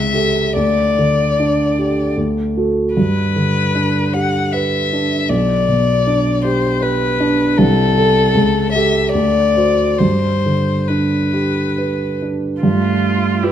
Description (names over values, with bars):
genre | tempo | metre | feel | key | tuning
classical, slow romantic movement for piano quartet | 66-79 BPM | 3/4 | rubato | G major | A4 = 439 Hz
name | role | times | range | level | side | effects
dark violin | melody | 0.0-13.5 s | F4 to F#5 | -18 LUFS | left 6 dB | none
dark baby grand piano | accompaniment | 0.0-13.5 s | B1 to C5 | -15 LUFS | right 2 dB | none
rich cello | second line | 12.6-13.5 s | G3 to A3 | -21 LUFS | right 12 dB | none
rich viola | accompaniment | 12.6-13.5 s | E4 to F4 | -22 LUFS | right 4 dB | none
room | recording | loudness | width
moderate recital hall reverb, RT60 1.6 s | close, detailed microphones | -13 LUFS | side -10 dB against mid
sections
0.0-12.6 A section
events
none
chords
0.0 A7/C#; 0.6 G5/D; 2.2 D; 3.0 G; 5.3 G/B; 7.6 Am/C; 8.4 A7/C#; 9.1 D7; 10.0 G; 12.6 G7(no3)